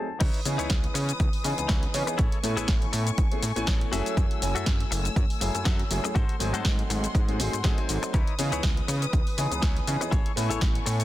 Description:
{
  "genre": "filtered disco house",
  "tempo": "121 BPM",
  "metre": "4/4",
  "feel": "swing 55% on 16ths",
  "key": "C# minor",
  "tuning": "A4 = 443 Hz",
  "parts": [
    { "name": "warm baby grand piano", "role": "accompaniment", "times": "0.0-11.0 s", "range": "E3 to G#5", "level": "-32 LUFS", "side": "equal", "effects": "phaser, vintage 12-bit sampler grit, sidechain pumping, low-pass filter" },
    { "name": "direct-recorded clean electric guitar", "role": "riff", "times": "0.0-11.0 s", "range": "D#4 to A5", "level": "-35 LUFS", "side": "left 5 dB", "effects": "vintage 12-bit sampler grit, sidechain pumping, low-pass filter" },
    { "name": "dark studio string section", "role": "sustained chords", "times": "0.2-11.0 s", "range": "A3 to E6", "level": "-36 LUFS", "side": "left 2 dB", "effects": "vintage 12-bit sampler grit, sidechain pumping, low-pass filter" },
    { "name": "fat analog bass", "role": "bass", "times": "0.2-11.0 s", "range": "F#1 to C#3", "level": "-29 LUFS", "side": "equal", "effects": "sidechain pumping, low-pass filter" },
    { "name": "electronic kick drum", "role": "drums", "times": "0.2-10.7 s", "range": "none", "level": "-25 LUFS", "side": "equal", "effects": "none" },
    { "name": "punchy analog drum machine", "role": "drums", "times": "0.2-11.0 s", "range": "crash cymbal, hi-hat, shaker, snare drum", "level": "-32 LUFS", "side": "left 1 dB", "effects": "sidechain pumping on hats, sidechain pumping on cymbals, sidechain pumping on perc" }
  ],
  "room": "little or no reverb",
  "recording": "dense, heavily limited modern master",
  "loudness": "-23 LUFS",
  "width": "side -14 dB against mid",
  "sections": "0.2-11.0 A section",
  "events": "break 0.0; clean electric guitar fill 0.0, 7.4-8.1; drop 0.2-11.0",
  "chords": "0.2 C#m9; 2.2 Amaj7; 3.9 F#m9; 6.2 G#7b9; 8.1 C#m9; 10.1 Amaj7"
}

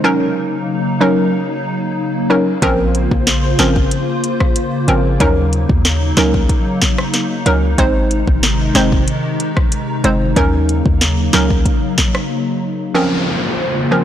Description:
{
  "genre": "dancehall",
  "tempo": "93 BPM",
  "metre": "4/4",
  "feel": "straight",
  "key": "Eb dorian",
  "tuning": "A4 = 441 Hz",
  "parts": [
    { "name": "hollow square pluck", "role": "accompaniment", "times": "0.0-14.0 s", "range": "F3 to C5", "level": "-17 LUFS", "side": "right 1 dB", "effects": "chorus" },
    { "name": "hollow soft pad", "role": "sustained chords", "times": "0.0-14.0 s", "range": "C3 to C5", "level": "-19 LUFS", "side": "left 1 dB", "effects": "ensemble chorus, sidechain pumping" },
    { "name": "clean 808-style bass", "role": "bass", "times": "2.6-11.6 s", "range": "Gb1 to Eb2", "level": "-17 LUFS", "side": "equal", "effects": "none" },
    { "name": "afro-pop drum kit", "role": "drums", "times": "2.6-12.3 s", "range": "hi-hat, kick drum, rim click, snare drum", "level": "-16 LUFS", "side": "equal", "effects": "none" },
    { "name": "downlifter", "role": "sound effects", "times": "12.9-14.0 s", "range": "none", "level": "-20 LUFS", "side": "left 1 dB", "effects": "none" }
  ],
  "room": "light reverb",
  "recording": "blown-out, overdriven recording, overdrive",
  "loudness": "-13 LUFS",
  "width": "side -10 dB against mid",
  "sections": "0.0-12.9 A section; 12.9-14.0 B section",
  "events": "break 12.3-12.9",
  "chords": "0.0 Ebm7; 2.6 Bbmadd9; 5.2 Ebm7; 7.8 Ab; 10.4 Ebm7; 12.9 Bbmadd9"
}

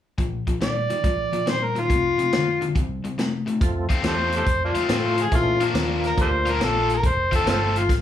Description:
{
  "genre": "electric blues shuffle",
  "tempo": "140 BPM",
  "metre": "4/4",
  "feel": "swing 67% on 8ths",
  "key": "F major",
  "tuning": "A4 = 440 Hz",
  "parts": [
    { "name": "cranked stack guitar", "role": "riff", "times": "0.2-7.8 s", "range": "F2 to F4", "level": "-27 LUFS", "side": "left 5 dB", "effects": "overdrive" },
    { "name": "vintage drum kit", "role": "drums", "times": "0.2-8.0 s", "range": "hi-hat, kick drum, snare drum", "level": "-25 LUFS", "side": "equal", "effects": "none" },
    { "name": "overdriven harmonica", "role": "melody", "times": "0.6-7.9 s", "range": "Bb3 to D5", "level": "-22 LUFS", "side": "left 1 dB", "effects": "none" },
    { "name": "percussive tonewheel organ", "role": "accompaniment", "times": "3.6-7.7 s", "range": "E3 to Bb4", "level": "-29 LUFS", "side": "right 3 dB", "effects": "slow rotary speaker, overdrive, chorus vibrato" },
    { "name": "vintage muted fingered electric bass", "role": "bass", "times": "3.6-8.0 s", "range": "F1 to Bb2", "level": "-26 LUFS", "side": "equal", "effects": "none" }
  ],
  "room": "moderate club reverb, RT60 0.8 s",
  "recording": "studio reverb",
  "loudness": "-20 LUFS",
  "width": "side -10 dB against mid",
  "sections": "0.2-3.6 A section; 3.6-8.0 B section",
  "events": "harmonica solo 3.6-8.0",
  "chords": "0.2 Bb; 1.9 F5; 2.8 C5; 3.6 F; 5.3 Bb; 7.0 F"
}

